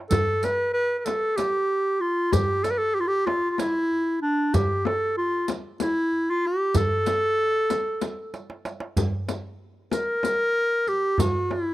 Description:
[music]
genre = Turkish makam ensemble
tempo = 190 BPM (eighths)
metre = 7/8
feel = straight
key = A makam ussak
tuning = A4 = 440 Hz
[part]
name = clear clarinet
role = melody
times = 0.1-11.7 s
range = D4 to B4-28c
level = -23 LUFS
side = equal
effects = none
[part]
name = darbuka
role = percussion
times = 0.1-11.7 s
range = none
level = -28 LUFS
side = right 1 dB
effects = none
[part]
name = frame drum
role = percussion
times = 0.1-11.7 s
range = none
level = -29 LUFS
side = left 5 dB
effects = none
[part]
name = riq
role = percussion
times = 0.1-11.3 s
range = none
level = -33 LUFS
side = right 4 dB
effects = none
[sound]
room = small room ambience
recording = dry, close 1970s-style studio recording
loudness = -22 LUFS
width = side -16 dB against mid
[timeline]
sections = 0.0-9.0 A section; 9.0-11.7 B section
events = drum fill 8.3-9.0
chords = none

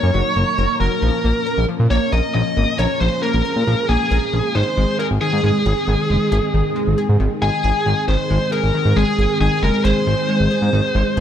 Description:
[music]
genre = synth-pop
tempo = 136 BPM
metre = 4/4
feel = straight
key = Ab mixolydian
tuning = A4 = 436 Hz
[part]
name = bluesy overdriven lead guitar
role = melody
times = 0.0-11.2 s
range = Ab4 to Eb5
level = -20 LUFS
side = right 1 dB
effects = distortion, ping-pong delay
[part]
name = string machine, cellos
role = sustained chords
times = 0.0-11.2 s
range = Eb3 to Bb4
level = -24 LUFS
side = equal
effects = ensemble chorus
[part]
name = analog pluck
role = arpeggios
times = 0.0-11.2 s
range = Eb3 to Bb4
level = -24 LUFS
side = left 3 dB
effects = chorus, ping-pong delay
[part]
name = smooth synth bass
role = bass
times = 0.0-11.2 s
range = Gb1 to Bb2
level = -17 LUFS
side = equal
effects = none
[sound]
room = moderate studio reverb, RT60 0.6 s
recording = none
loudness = -15 LUFS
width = side -9 dB against mid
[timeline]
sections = 0.0-8.1 A section; 8.1-11.2 A section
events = none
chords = 0.0 Gb; 1.0 Bbm; 4.6 Ab

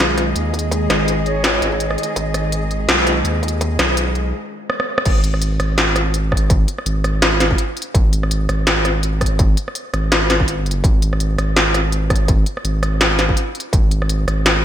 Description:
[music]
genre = half-time drum and bass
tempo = 166 BPM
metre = 4/4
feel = swing 57% on 16ths, half-time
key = G# minor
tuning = A4 = 442 Hz
[part]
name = muted studio cello section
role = sustained chords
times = 0.0-4.3 s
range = D#3 to E#5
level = -23 LUFS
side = equal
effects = sidechain pumping
[part]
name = saturated sub bass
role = bass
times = 0.0-14.6 s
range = G#1 to D#2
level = -19 LUFS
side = equal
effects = tube saturation
[part]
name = industrial drum kit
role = drums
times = 0.0-14.5 s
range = crash cymbal, hi-hat, rim click, snare drum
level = -18 LUFS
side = equal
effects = gated reverb
[part]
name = electronic kick drum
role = drums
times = 0.5-13.8 s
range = none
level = -17 LUFS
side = equal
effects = distortion, high-pass filter on kick
[part]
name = mellow concert flute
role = melody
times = 1.3-1.8 s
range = C#5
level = -26 LUFS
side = right 3 dB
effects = digital delay
[sound]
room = moderate lush hall reverb, RT60 2.0 s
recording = bright 1980s-style digital production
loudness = -15 LUFS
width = side -10 dB against mid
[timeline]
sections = 0.0-5.1 A section; 5.1-14.6 B section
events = build-up 0.0-5.1; break 4.3-5.1; drum fill 4.7-5.1; drop 5.1-14.6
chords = 0.0 G#5; 5.1 N.C.

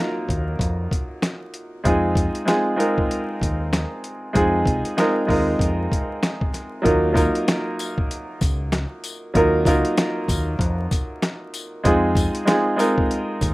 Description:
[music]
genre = hip hop, boom-bap hip-hop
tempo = 96 BPM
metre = 4/4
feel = swing 62% on 16ths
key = Eb dorian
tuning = A4 = 438 Hz
[part]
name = clear upright piano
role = accompaniment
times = 0.0-13.5 s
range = Gb3 to Bb4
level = -21 LUFS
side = right 1 dB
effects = cassette tape, high-pass filter, low-pass filter
[part]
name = deep dub fingered electric bass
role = bass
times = 0.3-13.5 s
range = C2 to F2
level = -24 LUFS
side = equal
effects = none
[part]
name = boom bap sampler-style drum kit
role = drums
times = 0.3-13.5 s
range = hi-hat, kick drum, snare drum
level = -23 LUFS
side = equal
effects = none
[part]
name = tambourine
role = percussion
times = 7.2-13.5 s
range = none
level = -34 LUFS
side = left 6 dB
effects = none
[sound]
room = light reverb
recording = rough home demo mix, vinyl crackle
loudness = -19 LUFS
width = side -20 dB against mid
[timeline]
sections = 0.0-6.9 A section; 6.9-13.5 B section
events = none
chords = 0.0 Ebmadd9; 1.9 Fm7; 6.9 Ebmadd9; 11.9 Fm7

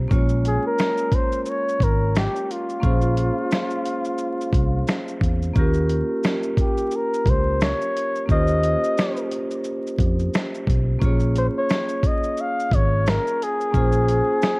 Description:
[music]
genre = lo-fi hip hop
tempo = 88 BPM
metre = 4/4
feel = swing 58% on 16ths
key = Bb dorian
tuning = A4 = 441 Hz
[part]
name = vibraphone with hard mallets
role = accompaniment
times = 0.0-14.6 s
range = Ab3 to Db5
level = -26 LUFS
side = right 1 dB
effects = low-pass filter
[part]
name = vintage muted fingered electric bass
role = bass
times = 0.0-14.2 s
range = Ab1 to F2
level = -21 LUFS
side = equal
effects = none
[part]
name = dusty soul sampler-style drum kit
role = drums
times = 0.1-14.6 s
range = finger snaps, hi-hat, kick drum, shaker, snare drum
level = -22 LUFS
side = equal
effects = none
[part]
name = mellow flugelhorn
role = melody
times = 0.5-14.6 s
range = F4 to F5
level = -24 LUFS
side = left 1 dB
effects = low-pass filter
[sound]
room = light reverb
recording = worn, warbling old tape, cassette tape, vinyl crackle, warbly pitch drift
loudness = -19 LUFS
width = side -26 dB against mid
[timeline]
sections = 0.1-14.6 A section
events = none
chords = 0.1 Bbm7; 5.6 Eb13; 11.0 Bbm7

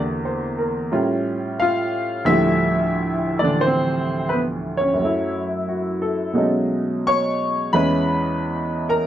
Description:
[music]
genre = solo jazz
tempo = 88 BPM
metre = 4/4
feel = swing 69% on 8ths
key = unclear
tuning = A4 = 438 Hz
[part]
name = clear upright piano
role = solo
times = 0.0-9.1 s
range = D2 to C#6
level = -19 LUFS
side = equal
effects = none
[sound]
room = moderate studio reverb, RT60 0.5 s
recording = dark, warm production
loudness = -19 LUFS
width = side -11 dB against mid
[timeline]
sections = 0.0-9.1 A section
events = none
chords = 0.0 Em7b5; 0.9 A7b13; 2.3 Dm11; 5.0 F#m7; 6.4 B13; 7.7 E6

